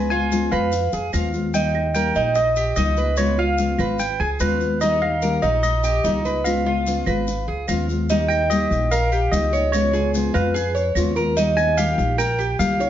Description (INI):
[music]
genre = latin, Cuban son and guajira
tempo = 147 BPM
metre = 4/4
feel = straight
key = Eb major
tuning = A4 = 444 Hz
[part]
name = barky tine electric piano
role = melody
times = 0.0-12.9 s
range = Cb5 to Ab5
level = -23 LUFS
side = equal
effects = medium stereo tremolo
[part]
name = nylon-string guitar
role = accompaniment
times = 0.0-12.9 s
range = Db3 to G4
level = -24 LUFS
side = left 3 dB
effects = none
[part]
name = Cuban tres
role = arpeggios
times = 0.0-12.9 s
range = Eb4 to F5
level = -24 LUFS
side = right 3 dB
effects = none
[part]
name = upright bass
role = bass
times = 0.0-12.9 s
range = Ab1 to F2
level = -24 LUFS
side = equal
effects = none
[part]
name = maracas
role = percussion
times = 0.3-12.9 s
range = none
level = -35 LUFS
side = left 4 dB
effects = none
[part]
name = claves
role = percussion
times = 0.5-12.4 s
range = none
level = -34 LUFS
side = right 8 dB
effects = none
[sound]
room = wet studio reverb, RT60 0.8 s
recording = heard from further back in the room, nothing above 7.5 kHz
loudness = -18 LUFS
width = side -11 dB against mid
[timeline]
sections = 0.0-8.1 A section; 8.1-12.9 B section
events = none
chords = 0.0 Db7; 1.5 Eb; 3.2 Db7; 4.8 Eb; 6.5 Db7; 8.1 Eb; 9.7 Db7; 11.4 Eb